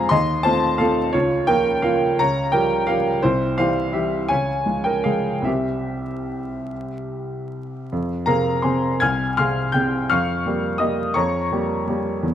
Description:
classical, piano waltz; 141-183 BPM; 3/4; rubato; F minor; A4 = 439 Hz
clear upright piano; solo; 0.0-12.3 s; C2 to Ab6; -19 LUFS; equal
light reverb; close, detailed microphones, vinyl crackle; -18 LUFS; side -10 dB against mid
0.0-7.9 A section; 7.9-12.3 B section
0.1 F7/Eb; 1.1 Bbm/Db; 3.2 C; 4.3 Db; 5.5 C; 7.9 Fm; 10.1 Gm7b5/F

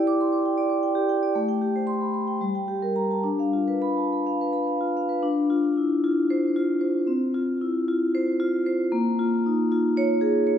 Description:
classical, contemporary piece for solo vibraphone; 207-236 BPM (eighths); 7/8; rubato; A4 = 440 Hz
vibraphone with medium hard mallets; solo; 0.0-10.6 s; G3 to D6; -22 LUFS; equal
wet recital hall reverb, RT60 1.8 s; heard from further back in the room; -22 LUFS; side -9 dB against mid
0.0-5.2 A section; 5.2-10.6 B section
0.0 Em7; 1.4 Am7; 2.4 Gm; 3.3 Dm6; 5.2 Dm7; 7.1 Csus4; 8.9 Bbm7

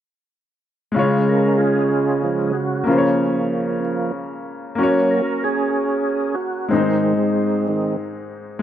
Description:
gospel; 63 BPM (dotted quarters); 6/8; straight; Db major; A4 = 441 Hz
bright baby grand piano; accompaniment; 0.9-8.6 s; Ab2 to Db5; -21 LUFS; left 3 dB
percussive tonewheel organ; sustained chords; 1.0-8.0 s; Db3 to Bb4; -20 LUFS; right 2 dB; slow rotary speaker, overdrive, chorus vibrato
moderate plate reverb, RT60 2.9 s; rough home demo mix; -17 LUFS; side -10 dB against mid
1.0-8.6 A section
tonewheel organ solo 1.0-8.6
1.0 Db; 2.9 Bbm/Db; 4.8 Gb; 6.7 Ab

